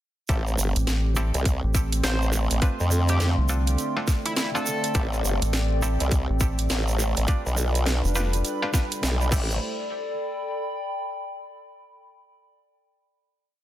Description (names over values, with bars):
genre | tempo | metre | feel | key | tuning
glitch hop | 103 BPM | 4/4 | swing 62% on 16ths | A minor | A4 = 440 Hz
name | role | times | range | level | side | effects
warm analog pad | sustained chords | 0.3-9.6 s | D3 to C5 | -33 LUFS | right 4 dB | chorus, sidechain pumping
muted clav | stabs | 0.3-9.5 s | C4 to D5 | -33 LUFS | equal | sidechain pumping, digital delay
formant-sweep wobble bass | bass | 0.3-9.6 s | G1 to F2 | -23 LUFS | equal | chorus, overdrive
drum and bass drum kit | drums | 0.3-9.5 s | crash cymbal, hi-hat, snare drum | -30 LUFS | equal | overdrive
electronic kick drum | drums | 0.3-9.5 s | none | -23 LUFS | equal | overdrive
egg shaker | percussion | 0.3-9.6 s | none | -34 LUFS | right 5 dB | none
warbly tape-like pad | texture | 1.0-11.9 s | A4 to C6 | -33 LUFS | left 2 dB | chorus, built-in reverb, sidechain pumping
rubbery square bass | bass | 0.8-8.4 s | F1 to C2 | -23 LUFS | equal | none
sync lead | melody | 2.0-5.0 s | E4 to C5 | -32 LUFS | equal | chorus, digital delay
room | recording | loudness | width
light reverb, digital ambience | dense, heavily limited modern master | -22 LUFS | side -13 dB against mid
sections
0.3-9.6 drop; 9.6-11.9 final chord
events
drop 0.3-9.6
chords
0.3 Am7; 2.6 Dm7; 5.0 Am7; 7.3 G7; 9.3 Am7; 9.6 A9sus4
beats
| 0.29 0.87 1.46 2.04 | 2.62 3.20 3.79 4.37 | 4.95 5.53 6.12 6.70 | 7.28 7.86 8.45 9.03 | 9.61 10.19 10.78 11.36